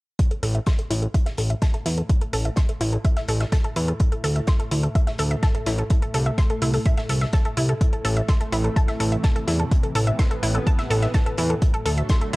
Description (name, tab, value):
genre	melodic techno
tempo	126 BPM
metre	4/4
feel	straight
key	A dorian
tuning	A4 = 441 Hz
part	analog drone	drone	0.9-12.4 s	A2 to A3	-34 LUFS	equal	chorus, sidechain pumping
part	electronic hi-hat	drums	0.2-12.4 s	none	-33 LUFS	equal	overdrive
part	electronic kick drum	drums	0.2-12.2 s	none	-19 LUFS	equal	overdrive
part	unplugged drum kit	drums	0.2-12.4 s	hi-hat, snare drum	-38 LUFS	equal	high-pass filter on hats, high-pass filter on snare, high-pass filter on room
part	analog pluck	arpeggios	0.3-12.4 s	E4 to C6	-28 LUFS	equal	chorus, sidechain pumping, tape echo
part	fat analog bass	bass	0.4-12.4 s	A1 to E2	-22 LUFS	equal	tube saturation, sidechain pumping
part	lush unison pad	sustained chords	8.3-12.4 s	C3 to B3	-32 LUFS	equal	chorus, phaser, sidechain pumping
room	little or no reverb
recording	dry, gritty hardware recording, cassette tape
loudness	-19 LUFS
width	side -22 dB against mid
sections	0.2-12.4 A section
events	filter sweep on synth arpeggio sound 0.2-12.4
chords	0.2 A5; 4.0 D5; 5.9 C; 7.8 Am; 11.6 D